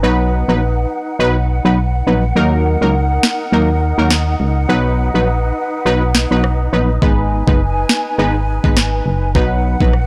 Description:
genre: dancehall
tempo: 103 BPM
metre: 4/4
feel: swing 56% on 16ths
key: unclear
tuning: A4 = 439 Hz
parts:
  - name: synth brass stab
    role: accompaniment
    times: 0.0-9.9 s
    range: F#3 to B4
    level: -19 LUFS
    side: equal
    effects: chorus
  - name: breathy large flute ensemble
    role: sustained chords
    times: 0.0-10.1 s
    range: Eb4 to Ab5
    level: -24 LUFS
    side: equal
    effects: sidechain pumping
  - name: solid FM bass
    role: bass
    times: 0.0-10.1 s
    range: Gb1 to Eb2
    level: -19 LUFS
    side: equal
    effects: none
  - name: island pop drum kit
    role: drums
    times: 3.2-10.1 s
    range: kick drum, rim click, snare drum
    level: -17 LUFS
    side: equal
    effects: overdrive
room: light reverb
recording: blown-out, overdriven recording, overdrive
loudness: -15 LUFS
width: mono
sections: 0.0-10.1 A section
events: none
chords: 0.0 B; 2.4 Ebm; 4.7 B; 7.0 Abm; 9.4 B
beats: | 0.03 0.61 1.20 1.78 | 2.36 2.94 3.53 4.11 | 4.69 5.27 5.86 6.44 | 7.02 7.60 8.19 8.77 | 9.35 9.93

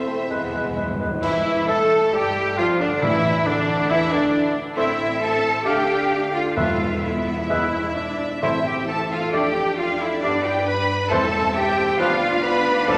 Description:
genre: classical, dramatic, fast romantic movement for symphony orchestra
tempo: 127-139 BPM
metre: 4/4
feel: rubato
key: A minor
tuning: A4 = 440 Hz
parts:
  - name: bright symphonic violin section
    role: melody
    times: 0.0-13.0 s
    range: D4 to F5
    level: -32 LUFS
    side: equal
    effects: none
  - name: large flute ensemble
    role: second line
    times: 0.0-13.0 s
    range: D5 to B5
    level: -34 LUFS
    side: equal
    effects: none
  - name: warm clarinet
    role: second line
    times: 0.0-13.0 s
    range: D4 to B4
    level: -30 LUFS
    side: equal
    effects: none
  - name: warm symphonic violin section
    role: second line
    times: 0.0-13.0 s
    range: G#3 to B5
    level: -31 LUFS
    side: equal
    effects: none
  - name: rich symphonic viola section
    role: accompaniment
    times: 0.0-13.0 s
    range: B3 to C5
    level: -30 LUFS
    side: equal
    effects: none
  - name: mellow French horn section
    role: sustained chords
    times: 0.0-13.0 s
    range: D3 to A4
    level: -33 LUFS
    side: equal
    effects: none
  - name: clear symphonic cello section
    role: bass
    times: 0.0-13.0 s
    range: E2 to B4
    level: -29 LUFS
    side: equal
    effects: none
  - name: clear symphonic double bass section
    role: bass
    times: 0.0-13.0 s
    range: E1 to A2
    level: -37 LUFS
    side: equal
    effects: none
  - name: warm cor anglais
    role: second line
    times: 0.1-13.0 s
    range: D4 to D5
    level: -32 LUFS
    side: equal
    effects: none
  - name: mellow bassoon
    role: accompaniment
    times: 0.1-13.0 s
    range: D3 to A3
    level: -32 LUFS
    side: equal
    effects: none
  - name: timpani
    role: percussion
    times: 0.3-3.6, 6.6-13.0 s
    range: E2 to A2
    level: -31 LUFS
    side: equal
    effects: none
  - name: mellow trumpet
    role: stabs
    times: 1.2-13.0 s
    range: D4 to F5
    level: -33 LUFS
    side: equal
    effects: none
  - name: clash cymbals and concert bass drum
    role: percussion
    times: 1.2-2.1 s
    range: none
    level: -42 LUFS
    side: equal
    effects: none
room: wet concert hall reverb, RT60 2.1 s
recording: none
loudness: -21 LUFS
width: mono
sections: 0.0-1.2 A section; 1.2-13.0 B section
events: timpani fill 0.3-1.2; band accent 1.2-1.7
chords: 0.3 E; 1.2 A5/E; 3.0 Dsus2; 4.8 Am; 5.7 Dm; 6.6 Esus4; 7.5 E; 8.4 Am; 9.3 Dm/F; 10.2 G; 11.1 C/E; 12.0 Bdim/D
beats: 0.30 0.77 | 1.23 1.69 2.13 2.58 | 3.02 3.46 3.90 4.34 | 4.78 5.22 5.66 6.11 | 6.57 7.04 7.50 7.97 | 8.43 8.88 9.33 9.78 | 10.23 10.67 11.11 11.55 | 11.99 12.43 12.88

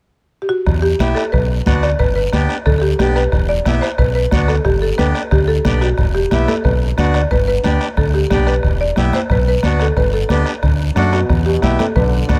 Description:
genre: latin, cumbia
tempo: 181 BPM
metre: 4/4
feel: straight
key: G major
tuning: A4 = 439 Hz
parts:
  - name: buzzing marimba with medium mallets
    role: melody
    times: 0.4-12.4 s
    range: F#4 to D5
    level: -22 LUFS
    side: equal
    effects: none
  - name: deep dub fingered electric bass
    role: bass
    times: 0.7-12.4 s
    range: E1 to F#2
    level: -19 LUFS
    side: equal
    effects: none
  - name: bombo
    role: percussion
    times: 0.7-12.4 s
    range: none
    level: -22 LUFS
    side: equal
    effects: none
  - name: guiro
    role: percussion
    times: 0.7-12.4 s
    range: none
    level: -35 LUFS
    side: equal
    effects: none
  - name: accordion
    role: accompaniment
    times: 1.0-12.4 s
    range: A3 to G4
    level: -24 LUFS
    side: equal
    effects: none
  - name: congas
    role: percussion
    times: 1.0-12.4 s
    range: none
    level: -25 LUFS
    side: equal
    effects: none
  - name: bright trombone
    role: second line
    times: 11.1-12.4 s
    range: B2 to D3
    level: -28 LUFS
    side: equal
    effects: none
room: little or no reverb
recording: close, detailed microphones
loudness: -16 LUFS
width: mono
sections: 0.7-11.3 A section; 11.3-12.4 A section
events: none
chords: 0.0 N.C.; 0.7 Em; 1.3 Bm; 2.0 G; 3.3 Em7; 4.0 Bm; 4.7 G; 6.0 Em; 6.6 Bm; 7.3 G; 8.6 Em7; 9.3 Bm; 10.0 G; 10.6 D; 11.3 Em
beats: 0.00 0.33 | 0.67 1.00 1.33 1.66 | 2.00 2.33 2.66 2.99 | 3.32 3.66 3.99 4.32 | 4.65 4.99 5.32 5.65 | 5.98 6.31 6.65 6.98 | 7.31 7.64 7.97 8.31 | 8.64 8.97 9.30 9.63 | 9.97 10.30 10.63 10.96 | 11.29 11.62 11.96 12.29

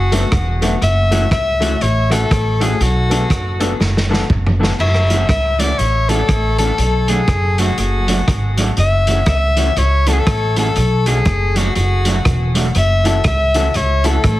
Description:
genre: ska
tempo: 121 BPM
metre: 4/4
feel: swing 60% on 8ths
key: F# minor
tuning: A4 = 437 Hz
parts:
  - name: bright soprano saxophone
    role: melody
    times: 0.0-14.4 s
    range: F#4 to E5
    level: -19 LUFS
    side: left 2 dB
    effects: tape echo
  - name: upright bass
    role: bass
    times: 0.0-14.4 s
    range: E1 to C#2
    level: -16 LUFS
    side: equal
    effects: none
  - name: electric guitar at the edge of break-up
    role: accompaniment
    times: 0.1-14.3 s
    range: E3 to F#4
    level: -23 LUFS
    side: right 2 dB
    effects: none
  - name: dark upright piano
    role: stabs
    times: 0.1-4.7, 13.1-14.2 s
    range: A3 to A4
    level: -24 LUFS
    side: left 4 dB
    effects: tape echo
  - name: vintage drum kit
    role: drums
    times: 0.1-14.4 s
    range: crash cymbal, hi-hat, kick drum, rim click, snare drum, toms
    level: -20 LUFS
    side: equal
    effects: tape echo
room: light reverb, studio reverb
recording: heavily compressed radio sound, multiband compression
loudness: -13 LUFS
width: side -16 dB against mid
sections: 0.0-4.8 A section; 4.8-14.4 A section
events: drum fill 3.8-4.8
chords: 0.0 Bm7; 0.8 F#m7; 2.8 Bm7; 4.8 F#m7; 6.8 Bm7; 8.8 F#m7; 10.8 Bm7; 12.8 F#m7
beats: 0.32 | 0.81 1.31 1.81 2.31 | 2.80 3.30 3.80 4.30 | 4.79 5.29 5.79 6.29 | 6.78 7.28 7.78 8.28 | 8.77 9.27 9.77 10.27 | 10.76 11.26 11.76 12.25 | 12.75 13.25 13.75 14.24

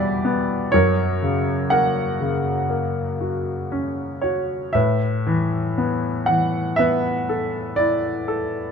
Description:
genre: classical, lyrical solo piano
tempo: 60 BPM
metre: 4/4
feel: rubato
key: unclear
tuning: A4 = 439 Hz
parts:
  - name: clear baby grand piano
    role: solo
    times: 0.0-8.7 s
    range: E2 to F#5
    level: -19 LUFS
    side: equal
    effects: none
room: moderate recital hall reverb, RT60 1.7 s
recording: close, detailed microphones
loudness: -19 LUFS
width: side -6 dB against mid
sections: 0.0-8.7 A section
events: none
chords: 0.0 Em; 0.7 F#; 4.7 Asus2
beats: | 0.72 1.70 2.69 3.71 | 4.74 5.77 6.78 7.79

